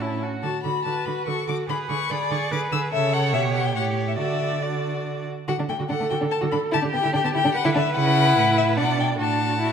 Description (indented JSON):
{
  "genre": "quick classical-period movement for string quartet",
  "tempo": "144 BPM",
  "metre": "3/4",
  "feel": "straight",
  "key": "D major",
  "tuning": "A4 = 440 Hz",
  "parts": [
    { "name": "rich violin", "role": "melody", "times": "0.0-9.7 s", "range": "D5 to E6", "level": "-25 LUFS", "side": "left 7 dB", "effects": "none" },
    { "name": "rich violin", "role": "second line", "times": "0.0-9.7 s", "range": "A3 to A4", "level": "-27 LUFS", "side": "left 2 dB", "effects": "none" },
    { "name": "clear viola", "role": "accompaniment", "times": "0.0-9.7 s", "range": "E4 to D5", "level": "-28 LUFS", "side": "right 3 dB", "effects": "none" },
    { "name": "rich cello", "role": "bass", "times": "0.0-9.7 s", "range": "A2 to D3", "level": "-26 LUFS", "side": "right 5 dB", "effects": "none" }
  ],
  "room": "moderate concert hall reverb, RT60 1.8 s",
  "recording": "none",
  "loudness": "-20 LUFS",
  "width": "side -7 dB against mid",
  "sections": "0.0-5.5 A section; 5.5-9.7 B section",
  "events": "none",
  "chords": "0.0 A; 0.4 D; 1.7 Bm69/D; 2.9 A/C#; 3.3 G/B; 3.8 A7; 4.2 D; 6.7 Em7/D; 8.0 A/C#; 8.8 Bm; 9.2 D/A",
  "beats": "0.01 | 0.43 0.86 1.27 | 1.69 2.10 2.51 | 2.92 3.33 3.75 | 4.18 4.62 5.05 | 5.48 5.90 6.31 | 6.73 7.14 7.55 | 7.96 8.37 8.78 | 9.19 9.61"
}